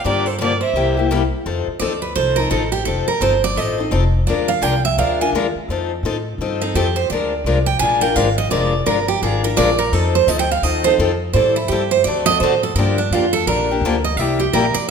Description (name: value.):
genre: acoustic string swing (jazz manouche).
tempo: 170 BPM.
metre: 4/4.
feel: swing 62% on 8ths.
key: F mixolydian.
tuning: A4 = 440 Hz.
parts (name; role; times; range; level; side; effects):
dark violin; melody; 0.0-1.1 s; C5 to E5; -23 LUFS; right 1 dB; none.
picked steel-string acoustic guitar; second line; 0.0-14.9 s; D4 to Ab5; -18 LUFS; right 6 dB; none.
picked steel-string acoustic guitar; accompaniment; 0.0-14.7 s; C3 to Bb4; -20 LUFS; left 6 dB; none.
upright bass; bass; 0.0-14.8 s; F1 to A2; -22 LUFS; left 1 dB; none.
room: moderate recital hall reverb, RT60 1.6 s.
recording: minimal, uncompressed stereo recording.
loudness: -15 LUFS.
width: side -6 dB against mid.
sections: 0.0-1.5 A section; 1.5-14.9 B section.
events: steel-string acoustic guitar solo 1.5-14.9.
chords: 0.0 Gm7; 0.7 C7; 1.5 F7; 4.3 Bb7; 5.7 F7; 7.1 Bb7; 9.9 F7; 11.3 Am7; 12.1 D7; 12.8 Gm7; 14.2 C7.